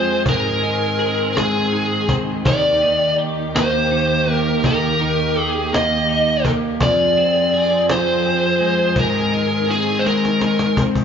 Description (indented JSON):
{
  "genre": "six-eight pop ballad",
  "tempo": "55 BPM (dotted quarters)",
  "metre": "6/8",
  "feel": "straight",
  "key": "Eb major",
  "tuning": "A4 = 440 Hz",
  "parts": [
    { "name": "biting lead guitar", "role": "melody", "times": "0.0-10.8 s", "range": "Ab4 to Eb5", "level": "-18 LUFS", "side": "equal", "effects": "overdrive" },
    { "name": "twelve-string electric guitar", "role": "accompaniment", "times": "0.0-11.0 s", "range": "F2 to Ab4", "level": "-21 LUFS", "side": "equal", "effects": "none" },
    { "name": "rich symphonic string section", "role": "sustained chords", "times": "0.0-11.0 s", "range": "Eb2 to Ab4", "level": "-25 LUFS", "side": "right 1 dB", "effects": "none" },
    { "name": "cajon", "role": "drums", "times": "0.3-11.0 s", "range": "none", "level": "-22 LUFS", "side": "left 1 dB", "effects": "none" }
  ],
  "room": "wet large studio reverb, RT60 1.5 s",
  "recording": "band playing live in one room, nothing above 7.5 kHz",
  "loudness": "-15 LUFS",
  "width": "side -7 dB against mid",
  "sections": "0.0-11.0 A section",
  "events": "drum fill 10.0-11.0",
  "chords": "0.3 Ab; 2.5 Eb; 6.8 Fm; 9.0 Ab",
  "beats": "| 0.26 1.35 | 2.45 3.54 | 4.63 5.72 | 6.80 7.88 | 8.96 10.04"
}